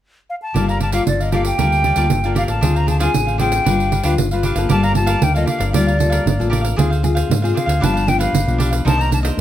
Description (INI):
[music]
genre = samba and choro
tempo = 116 BPM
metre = 4/4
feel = straight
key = G minor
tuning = A4 = 438 Hz
[part]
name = breathy silver concert flute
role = melody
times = 0.3-9.2 s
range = D5 to Bb5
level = -21 LUFS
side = left 1 dB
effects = none
[part]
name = cavaquinho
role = accompaniment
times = 0.5-9.4 s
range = D4 to F5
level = -26 LUFS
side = right 2 dB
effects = none
[part]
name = nylon-string guitar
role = accompaniment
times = 0.5-9.4 s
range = G2 to B4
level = -22 LUFS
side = left 4 dB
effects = none
[part]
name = fingered electric bass with an envelope filter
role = bass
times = 0.5-9.4 s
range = G1 to Ab2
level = -19 LUFS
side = equal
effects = none
[part]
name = pandeiro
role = percussion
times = 0.6-9.4 s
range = none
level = -21 LUFS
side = right 5 dB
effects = none
[sound]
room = moderate studio reverb, RT60 0.6 s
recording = none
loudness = -14 LUFS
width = side -12 dB against mid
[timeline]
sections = 0.5-4.7 A section; 4.7-9.4 B section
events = none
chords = 0.0 N.C.; 0.5 Gm9; 2.6 Dm7b5; 3.7 G7; 4.7 Gm9; 6.8 Dm7b5; 7.8 G7; 8.9 Cm9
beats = 0.03 | 0.55 1.07 1.59 2.11 | 2.63 3.15 3.67 4.18 | 4.70 5.22 5.74 6.26 | 6.78 7.30 7.82 8.34 | 8.86 9.38